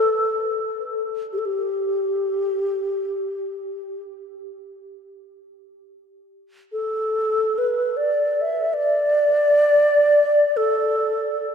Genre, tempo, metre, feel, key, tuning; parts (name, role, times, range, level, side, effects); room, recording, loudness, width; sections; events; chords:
world meditative, free-time meditation music; free time; G major pentatonic; A4 = 440 Hz
mellow xiao; solo; 0.0-11.5 s; G4 to E5; -19 LUFS; equal
wet cathedral reverb, RT60 5.2 s; in a vast, echoing space; -18 LUFS; side -7 dB against mid
0.0-11.5 A section